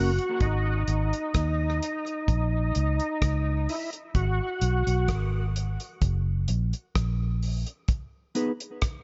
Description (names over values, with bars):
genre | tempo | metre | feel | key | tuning
dub reggae | 64 BPM | 4/4 | straight | G# minor | A4 = 438 Hz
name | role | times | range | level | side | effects
overdriven tonewheel organ | melody | 0.0-5.1 s | D#4 to F#4 | -32 LUFS | equal | chorus vibrato, slow rotary speaker, tape echo
mellow electric guitar | accompaniment | 0.0-0.1, 8.3-8.5 s | B3 to B4 | -33 LUFS | equal | tape echo
vintage muted fingered electric bass | bass | 0.0-7.6 s | F#1 to D#2 | -28 LUFS | equal | none
damped 70s drum kit | drums | 0.2-9.0 s | hi-hat, kick drum, rim click | -31 LUFS | equal | none
room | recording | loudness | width
little or no reverb | nothing above 7.7 kHz | -27 LUFS | mono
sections
0.0-9.0 A section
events
break 0.4-7.9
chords
0.4 G#5; 2.3 A#madd11; 4.1 G#m; 6.0 F#; 7.9 G#m